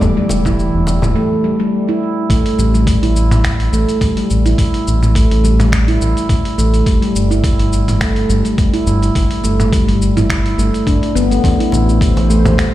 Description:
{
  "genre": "organic downtempo",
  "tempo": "105 BPM",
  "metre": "4/4",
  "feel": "swing 54% on 16ths",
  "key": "A minor",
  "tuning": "A4 = 440 Hz",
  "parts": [
    { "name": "airy breathy pad", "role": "sustained chords", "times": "0.0-1.2, 11.7-12.7 s", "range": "E3 to D5", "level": "-23 LUFS", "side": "right 1 dB", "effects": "chorus, sidechain pumping" },
    { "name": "handpan", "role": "arpeggios", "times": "0.0-12.7 s", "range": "G3 to E4", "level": "-16 LUFS", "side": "equal", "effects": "ping-pong delay" },
    { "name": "round analog bass", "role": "bass", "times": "0.0-12.7 s", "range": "E1 to A1", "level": "-15 LUFS", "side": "equal", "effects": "tube saturation" },
    { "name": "dusty soul sampler-style drum kit", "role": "drums", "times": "0.0-12.7 s", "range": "finger snaps, hi-hat, shaker, toms", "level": "-22 LUFS", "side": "equal", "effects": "none" },
    { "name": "congas", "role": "percussion", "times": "0.0-1.1, 11.4-12.6 s", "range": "none", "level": "-22 LUFS", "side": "left 1 dB", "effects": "none" },
    { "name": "electronic kick drum", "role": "drums", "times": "0.5-12.7 s", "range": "none", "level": "-17 LUFS", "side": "equal", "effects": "none" }
  ],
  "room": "light reverb",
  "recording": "played on a big sound system in a bare room, large studio reverb",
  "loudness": "-11 LUFS",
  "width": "side -14 dB against mid",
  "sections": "0.0-2.3 A section; 2.3-12.7 B section",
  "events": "none",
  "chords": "0.0 Em7; 2.3 A5; 6.9 N.C.; 11.4 Am7",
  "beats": "| 0.01 0.58 1.16 1.73 | 2.30 2.87 3.44 4.01 | 4.58 5.16 5.73 6.30 | 6.87 7.44 8.01 8.58 | 9.15 9.73 10.30 10.87 | 11.44 12.01 12.58"
}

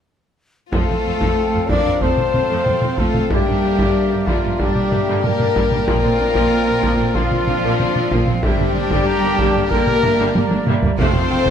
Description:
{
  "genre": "cinematic, epic orchestral film score",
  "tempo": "94 BPM",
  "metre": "4/4",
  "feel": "straight",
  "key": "F major",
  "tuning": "A4 = 440 Hz",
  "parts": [
    { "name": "warm chamber violin section", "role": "melody", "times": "0.7-11.5 s", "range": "D4 to Bb4", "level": "-27 LUFS", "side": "left 7 dB", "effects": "none" },
    { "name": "hollow concert flute", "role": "second line", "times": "0.7-11.5 s", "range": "D5 to Bb5", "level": "-30 LUFS", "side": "left 2 dB", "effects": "none" },
    { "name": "rich symphonic violin section", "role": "second line", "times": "0.7-11.5 s", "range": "F4 to D5", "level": "-29 LUFS", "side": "left 3 dB", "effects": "none" },
    { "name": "rich symphonic viola section", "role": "accompaniment", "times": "0.7-11.5 s", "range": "C3 to F4", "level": "-26 LUFS", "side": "right 1 dB", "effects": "none" },
    { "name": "clear trombone section", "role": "sustained chords", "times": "0.7-11.5 s", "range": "C3 to C4", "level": "-30 LUFS", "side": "right 5 dB", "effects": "none" },
    { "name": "warm French horn section", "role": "sustained chords", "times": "0.7-11.5 s", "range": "F4 to D5", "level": "-22 LUFS", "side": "left 8 dB", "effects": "none" },
    { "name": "warm woodwind section", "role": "sustained chords", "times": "0.7-11.5 s", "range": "A3 to F5", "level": "-29 LUFS", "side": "right 2 dB", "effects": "none" },
    { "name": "mellow trumpet", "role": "stabs", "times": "0.7-11.5 s", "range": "F4 to D5", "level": "-25 LUFS", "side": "right 2 dB", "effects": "none" },
    { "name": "dark chamber double bass section", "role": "bass", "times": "0.7-11.5 s", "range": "F1 to G2", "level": "-24 LUFS", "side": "right 4 dB", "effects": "none" },
    { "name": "rich symphonic cello section", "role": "bass", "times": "0.7-11.5 s", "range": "F3 to D4", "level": "-24 LUFS", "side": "right 2 dB", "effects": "none" },
    { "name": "solo taiko drums", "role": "drums", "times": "0.7-11.5 s", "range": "none", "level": "-21 LUFS", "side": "equal", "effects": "none" },
    { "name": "timpani", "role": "percussion", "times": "11.0-11.5 s", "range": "F2", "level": "-23 LUFS", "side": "equal", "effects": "none" }
  ],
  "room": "light reverb",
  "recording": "none",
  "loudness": "-15 LUFS",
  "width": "side -8 dB against mid",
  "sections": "0.7-11.5 A section",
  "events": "break 0.0-0.7; drum fill 0.1-0.7, 10.4-11.0",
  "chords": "0.0 N.C.; 0.7 F; 3.3 Gm; 5.9 Bbadd9; 8.4 Gm; 11.0 F",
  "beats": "0.07 | 0.73 1.37 2.02 2.67 | 3.31 3.96 4.60 5.24 | 5.88 6.52 7.16 7.80 | 8.44 9.08 9.71 10.35 | 10.99"
}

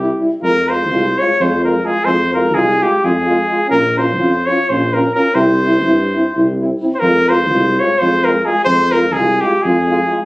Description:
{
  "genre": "balkan folk, Balkan brass band",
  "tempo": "254 BPM (eighths)",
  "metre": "7/8",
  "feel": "straight",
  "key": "unclear",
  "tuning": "A4 = 439 Hz",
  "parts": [
    { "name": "clear flugelhorn", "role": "melody", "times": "0.0-10.2 s", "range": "G4 to Db5", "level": "-15 LUFS", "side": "equal", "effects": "none" },
    { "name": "warm French horn", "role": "accompaniment", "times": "0.0-10.2 s", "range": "E4 to F4", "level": "-19 LUFS", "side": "equal", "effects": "none" },
    { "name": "warm euphonium", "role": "accompaniment", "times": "0.0-10.2 s", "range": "G3 to Db4", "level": "-24 LUFS", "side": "right 2 dB", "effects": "none" },
    { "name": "mellow tuba", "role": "bass", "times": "0.0-10.0 s", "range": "Bb1 to G2", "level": "-18 LUFS", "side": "equal", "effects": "none" }
  ],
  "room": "moderate small room reverb, RT60 0.5 s",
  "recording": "recorded on a phone in the room, studio ambience",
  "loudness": "-12 LUFS",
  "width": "side -20 dB against mid",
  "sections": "0.0-7.0 A section; 7.0-10.2 A section",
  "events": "none",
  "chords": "0.4 Fm; 3.7 Bbm; 5.4 C; 7.0 Fm",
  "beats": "0.16 | 0.40 0.64 0.87 1.11 1.34 1.58 1.82 | 2.05 2.29 2.53 2.76 3.00 3.23 3.47 | 3.71 3.94 4.18 4.42 4.65 4.89 5.13 | 5.36 5.60 5.83 6.07 6.31 6.54 6.78 | 7.01 7.25 7.48 7.72 7.95 8.19 8.42 | 8.66 8.89 9.13 9.36 9.60 9.83 10.06"
}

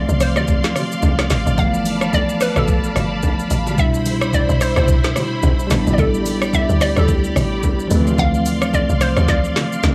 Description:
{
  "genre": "amapiano",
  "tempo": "109 BPM",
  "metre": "4/4",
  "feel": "swing 58% on 16ths",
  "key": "D dorian",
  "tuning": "A4 = 440 Hz",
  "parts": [
    { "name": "hollow square pluck", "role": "melody", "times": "0.0-9.9 s", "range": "A4 to F5", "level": "-25 LUFS", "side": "equal", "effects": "chorus, tape echo" },
    { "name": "bell-like tine electric piano", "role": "accompaniment", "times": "0.0-9.9 s", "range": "B2 to E4", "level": "-24 LUFS", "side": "equal", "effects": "none" },
    { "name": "string machine, violas", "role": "sustained chords", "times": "0.0-9.9 s", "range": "E4 to C6", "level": "-28 LUFS", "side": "equal", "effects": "ensemble chorus" },
    { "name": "woody log drum bass", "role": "bass", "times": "0.0-9.9 s", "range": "G1 to D2", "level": "-22 LUFS", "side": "equal", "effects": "none" },
    { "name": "smooth R&B drum kit", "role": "drums", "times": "0.1-9.9 s", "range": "hi-hat, kick drum, rim click, shaker, snare drum", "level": "-23 LUFS", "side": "equal", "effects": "none" },
    { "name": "bongos and congas", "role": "percussion", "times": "0.4-9.9 s", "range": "none", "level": "-31 LUFS", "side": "equal", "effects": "none" }
  ],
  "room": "little or no reverb",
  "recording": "small room ambience",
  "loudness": "-17 LUFS",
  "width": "mono",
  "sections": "0.0-9.9 A section",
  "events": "drum fill 9.3-9.9",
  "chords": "0.0 Dm9; 1.6 G13; 3.8 Cmaj7; 5.7 A9sus4; 7.9 Dm9",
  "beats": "0.48 1.03 | 1.58 2.13 2.68 3.23 | 3.78 4.33 4.88 5.43 | 5.98 6.53 7.08 7.63 | 8.19 8.74 9.29 9.84"
}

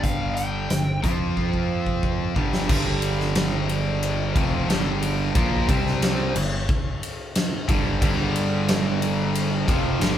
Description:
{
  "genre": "hard rock",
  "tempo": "90 BPM",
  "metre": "4/4",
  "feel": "straight",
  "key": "G minor",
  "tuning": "A4 = 439 Hz",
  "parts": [
    { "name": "nasal lead guitar with a parked wah", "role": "melody", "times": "0.0-1.0 s", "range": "F5 to G5", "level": "-30 LUFS", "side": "left 1 dB", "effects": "overdrive" },
    { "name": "overdriven semi-hollow guitar", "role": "riff", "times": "0.0-10.2 s", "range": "F2 to F4", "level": "-27 LUFS", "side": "right 6 dB", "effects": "phaser" },
    { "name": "tight distorted guitar", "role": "riff", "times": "0.0-10.2 s", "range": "F2 to F4", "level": "-28 LUFS", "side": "left 6 dB", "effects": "distortion" },
    { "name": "modern bright picked electric bass", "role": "bass", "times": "0.0-10.2 s", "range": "F1 to F2", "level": "-27 LUFS", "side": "equal", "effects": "none" },
    { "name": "huge arena drum kit", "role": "drums", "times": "0.0-10.2 s", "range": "crash cymbal, hi-hat, kick drum, ride cymbal, snare drum", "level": "-24 LUFS", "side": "equal", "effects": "none" },
    { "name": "distorted electric guitar", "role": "riff", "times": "8.0-10.2 s", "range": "F2 to G3", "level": "-28 LUFS", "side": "right 1 dB", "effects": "distortion" }
  ],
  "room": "light reverb",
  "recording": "band playing live in one room",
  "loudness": "-20 LUFS",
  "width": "side -10 dB against mid",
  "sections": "0.0-2.7 A section; 2.7-10.2 B section",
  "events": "drum fill 1.4-2.7",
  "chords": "0.0 G5; 1.0 F5; 2.4 G5; 2.7 Gm; 5.7 C5; 6.4 G5",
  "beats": "| 0.03 0.70 1.37 2.03 | 2.70 3.36 4.03 4.69 | 5.36 6.02 6.69 7.35 | 8.01 8.68 9.34 10.01"
}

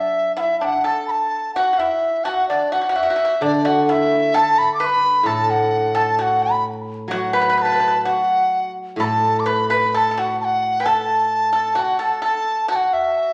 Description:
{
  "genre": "chinese traditional, Chinese chamber ensemble",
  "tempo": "65 BPM",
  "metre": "2/4",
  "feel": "straight",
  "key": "unclear",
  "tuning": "A4 = 440 Hz",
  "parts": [
    { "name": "bright reedy large dizi", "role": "melody", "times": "0.0-13.3 s", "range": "D5 to D6", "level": "-20 LUFS", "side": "equal", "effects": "none" },
    { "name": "pipa", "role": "second line", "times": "0.0-13.3 s", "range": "D4 to B4", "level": "-26 LUFS", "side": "equal", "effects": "none" },
    { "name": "steel-string zither", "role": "accompaniment", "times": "0.0-11.8 s", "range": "A2 to F#3", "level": "-26 LUFS", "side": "equal", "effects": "none" }
  ],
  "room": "wet recital hall reverb, RT60 1.4 s",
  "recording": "vinyl crackle",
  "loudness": "-19 LUFS",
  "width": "mono",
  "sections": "0.0-1.6 A section; 1.6-13.3 B section",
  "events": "none",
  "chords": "none",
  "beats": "0.60 | 1.55 2.50 | 3.42 4.34 | 5.25 6.17 | 7.10 8.04 | 8.99 9.93 | 10.86 11.78 | 12.69"
}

